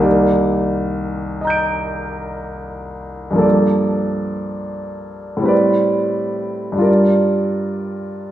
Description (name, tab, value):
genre	classical, impressionist solo piano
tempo	88 BPM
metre	5/4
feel	rubato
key	G minor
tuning	A4 = 440 Hz
part	warm concert grand piano	solo	0.0-8.3 s	C2 to D7	-16 LUFS	equal	none
room	wet recital hall reverb, RT60 1.4 s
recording	heard from further back in the room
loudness	-15 LUFS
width	side -12 dB against mid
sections	0.0-8.3 A section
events	none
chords	0.1 Cm9; 3.4 Gm9; 6.9 Gm7